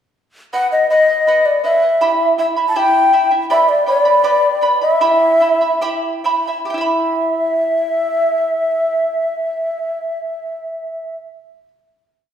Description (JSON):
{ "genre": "andean folk, Andean ensemble", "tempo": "65-81 BPM", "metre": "2/4", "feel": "straight", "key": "E minor", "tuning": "A4 = 440 Hz", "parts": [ { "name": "mellow hollow large quena", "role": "melody", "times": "0.5-11.2 s", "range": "D5 to A5", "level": "-14 LUFS", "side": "left 1 dB", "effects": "none" }, { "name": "charango", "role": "accompaniment", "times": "0.5-11.7 s", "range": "E4 to B5", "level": "-18 LUFS", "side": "right 3 dB", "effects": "none" } ], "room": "wet recital hall reverb, RT60 1.4 s", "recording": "recorded in a church or concert hall", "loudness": "-13 LUFS", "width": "side -9 dB against mid", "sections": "0.5-6.7 A section; 6.7-10.4 final chord", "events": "slowing down 3.5-6.7", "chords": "0.5 B; 2.0 Em; 3.5 G; 5.0 Em" }